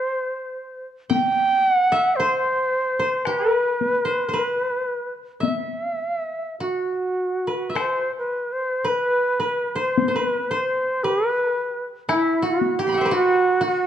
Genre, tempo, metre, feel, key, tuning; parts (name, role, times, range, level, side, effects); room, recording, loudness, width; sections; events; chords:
japanese traditional, Japanese chamber music; 49-60 BPM; 4/4; rubato; E hirajoshi; A4 = 435 Hz
reedy shakuhachi; melody; 0.0-13.9 s; E4 to G5; -21 LUFS; right 1 dB
koto; second line; 0.0-13.9 s; E4 to C6; -25 LUFS; left 1 dB
solo taiko drums; percussion; 1.1-12.9 s; -26 LUFS; left 7 dB
moderate recital hall reverb, RT60 1.5 s; dark, warm production; -20 LUFS; side -10 dB against mid
0.0-7.8 A section; 7.8-13.9 B section